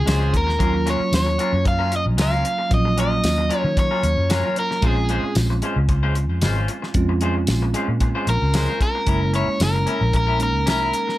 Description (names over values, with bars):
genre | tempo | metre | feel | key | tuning
straight-eighth soul blues | 113 BPM | 4/4 | straight | Bb minor | A4 = 438 Hz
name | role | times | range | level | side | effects
overdriven electric guitar | melody | 0.0-11.2 s | Ab4 to F5 | -23 LUFS | left 1 dB | plate reverb
bell-like tine electric piano | accompaniment | 0.0-11.2 s | Gb3 to F4 | -26 LUFS | right 4 dB | none
vintage muted fingered electric bass | bass | 0.0-10.9 s | Gb1 to Eb3 | -21 LUFS | equal | none
electric guitar through a small old amp | stabs | 0.1-11.1 s | Gb3 to C5 | -28 LUFS | left 4 dB | digital delay
cloth-damped thuddy drum kit | drums | 0.1-11.1 s | hi-hat, kick drum, snare drum, tambourine | -23 LUFS | equal | none
room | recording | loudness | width
moderate club reverb, RT60 0.6 s | none | -18 LUFS | side -15 dB against mid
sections
0.0-11.2 A section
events
none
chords
0.0 Bbm9; 0.6 Ebm9; 4.8 Bbm9; 9.1 Gb7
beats
0.07 | 0.60 1.13 1.66 2.19 | 2.71 3.24 3.77 4.30 | 4.83 5.36 5.89 6.42 | 6.95 7.48 8.01 8.54 | 9.07 9.61 10.14 10.67